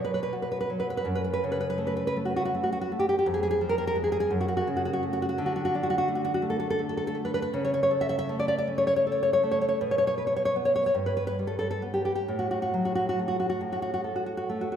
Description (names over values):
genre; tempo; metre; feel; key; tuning
romantic piece for solo classical guitar; 42-58 BPM (dotted quarters); 6/8; rubato; D major from 5.4 s; A4 = 438 Hz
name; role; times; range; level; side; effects
nylon-string guitar; solo; 0.0-14.8 s; F2 to E5; -25 LUFS; equal; none
room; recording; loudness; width
wet church reverb, RT60 3.3 s; recorded in a church or concert hall; -25 LUFS; side -8 dB against mid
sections
0.0-14.8 A section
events
none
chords
0.0 B5; 1.1 F#m; 3.3 Fmadd11; 4.3 F#m; 5.4 D5; 7.5 A/C#; 9.8 N.C.; 10.9 Gadd9; 12.3 F#m/A; 13.6 N.C.